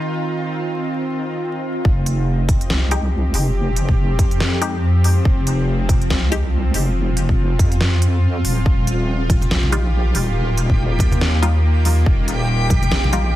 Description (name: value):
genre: deep dubstep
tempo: 141 BPM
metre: 4/4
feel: swing 58% on 16ths, half-time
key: unclear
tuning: A4 = 445 Hz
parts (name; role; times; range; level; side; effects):
- bowed-like drone; sustained chords; 0.0-13.4 s; Eb3 to G4; -24 LUFS; equal; built-in reverb
- backwards swelling texture; texture; 0.0-1.9, 9.5-13.4 s; Eb4 to G5; -30 LUFS; equal; built-in reverb
- deep soft wobble bass; bass; 1.8-13.4 s; Eb1 to F2; -18 LUFS; equal; chorus, tube saturation
- electronic kick drum; drums; 1.8-12.8 s; none; -18 LUFS; equal; studio reverb
- dubstep drum kit; drums; 2.1-13.2 s; hi-hat, snare drum; -24 LUFS; equal; studio reverb
- filtered dub chord stab; stabs; 2.9-6.4, 9.7-13.3 s; G3 to G4; -26 LUFS; left 3 dB; phaser, vintage 12-bit sampler grit, dub echo
- congas; percussion; 9.3-13.1 s; none; -25 LUFS; right 1 dB; none
room: little or no reverb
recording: dense, heavily limited modern master, vinyl crackle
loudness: -16 LUFS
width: side -14 dB against mid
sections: 0.0-1.8 A section; 1.8-13.4 B section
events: drop 1.8-13.4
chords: 0.0 Ebsus2; 1.8 F7(no3); 8.7 Ebadd9